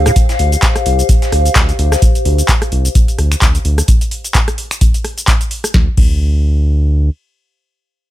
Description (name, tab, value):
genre	acid house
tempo	129 BPM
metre	4/4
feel	swing 56% on 16ths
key	D minor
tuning	A4 = 440 Hz
part	round analog bass	bass	0.0-7.1 s	C2 to D2	-13 LUFS	equal	sidechain pumping
part	warbly tape-like pad	texture	0.0-2.0 s	G4 to F5	-19 LUFS	left 2 dB	chorus, built-in reverb, sidechain pumping
part	booming analog drum machine	drums	0.1-6.1 s	cabasa, crash cymbal, finger snaps, handclaps, hi-hat, rim click, snare drum	-18 LUFS	equal	none
part	dusty soul sampler-style drum kit	drums	0.2-2.0 s	hi-hat, snare drum	-26 LUFS	equal	high-pass filter on hats, high-pass filter on snare, high-pass filter on room
part	electronic kick drum	drums	0.2-6.1 s	none	-12 LUFS	equal	none
room	little or no reverb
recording	none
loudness	-11 LUFS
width	side -14 dB against mid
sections	0.0-5.7 A section; 5.7-8.1 B section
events	drop 0.0-5.7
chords	0.0 Dm; 5.7 N.C.